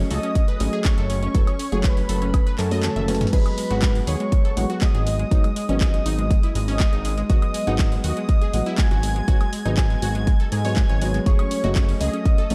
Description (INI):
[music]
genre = progressive house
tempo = 121 BPM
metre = 4/4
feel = straight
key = unclear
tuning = A4 = 440 Hz
[part]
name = unison pluck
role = arpeggios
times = 0.0-12.5 s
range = G#3 to E5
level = -33 LUFS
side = equal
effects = cassette tape, sidechain pumping, tape echo
[part]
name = felt-muted upright piano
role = stabs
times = 0.0-12.5 s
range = F#3 to F#5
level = -31 LUFS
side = equal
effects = sidechain pumping, tape echo
[part]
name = fat analog bass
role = bass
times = 0.0-12.5 s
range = F#1 to G#2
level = -26 LUFS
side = equal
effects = sidechain pumping
[part]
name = warm velvety synth lead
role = melody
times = 0.1-12.5 s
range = A4 to G#5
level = -33 LUFS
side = equal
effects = chorus, tape echo
[part]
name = airy dreamy lead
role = second line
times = 0.1-12.5 s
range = A5 to G#6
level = -38 LUFS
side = equal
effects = chorus, sidechain pumping, tape echo
[part]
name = breakbeat sampler-style drum kit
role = drums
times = 0.1-12.5 s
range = hi-hat, snare drum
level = -44 LUFS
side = equal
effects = none
[part]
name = house drum kit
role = drums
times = 0.1-12.5 s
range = crash cymbal, handclaps, hi-hat, toms, woodblock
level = -34 LUFS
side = equal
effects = sidechain pumping on hats, small room reverb, sidechain pumping on perc, sidechain pumping on toms, sidechain pumping on cymbals
[part]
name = electronic kick drum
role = drums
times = 0.4-12.4 s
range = none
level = -21 LUFS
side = equal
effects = small room reverb
[sound]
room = digital ambience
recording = dark, warm production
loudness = -21 LUFS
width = mono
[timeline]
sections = 0.0-12.5 A section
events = kick drops out 2.8-3.3; drum fill 2.8-3.3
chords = 0.0 F#madd9; 3.3 G#m7; 11.3 F#madd9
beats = 0.35 0.85 | 1.35 1.84 2.34 2.83 | 3.33 3.83 4.32 4.82 | 5.31 5.81 6.30 6.80 | 7.30 7.79 8.29 8.78 | 9.28 9.78 10.27 10.77 | 11.26 11.76 12.26